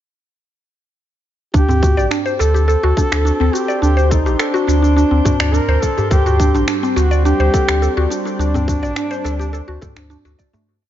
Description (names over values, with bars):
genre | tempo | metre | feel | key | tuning
organic downtempo | 105 BPM | 4/4 | straight | unclear | A4 = 439 Hz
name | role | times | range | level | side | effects
mellow duduk | melody | 1.5-10.1 s | D4 to Bb4 | -20 LUFS | equal | dub echo
mallet-like synth pluck | arpeggios | 1.5-10.7 s | A3 to D5 | -20 LUFS | equal | chorus, dub echo
warm sub bass | bass | 1.5-10.3 s | A1 to D2 | -16 LUFS | equal | sidechain pumping
electronic kick drum | drums | 1.5-10.5 s | none | -17 LUFS | equal | none
drifting glass-harmonics texture | texture | 2.2-10.7 s | C4 to C5 | -29 LUFS | left 2 dB | chorus, built-in reverb
electronic shaker and finger snaps | drums | 1.6-10.6 s | none | -25 LUFS | right 1 dB | analog delay
darbuka | percussion | 1.7-10.6 s | none | -26 LUFS | right 1 dB | none
warm analog pad | sustained chords | 6.1-10.7 s | G3 to D5 | -27 LUFS | right 1 dB | chorus, sidechain pumping
room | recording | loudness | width
light reverb | echo-heavy mix, nothing above 7.5 kHz | -13 LUFS | side -11 dB against mid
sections
1.5-10.7 groove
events
fade-out 7.6-10.7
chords
1.5 D7sus4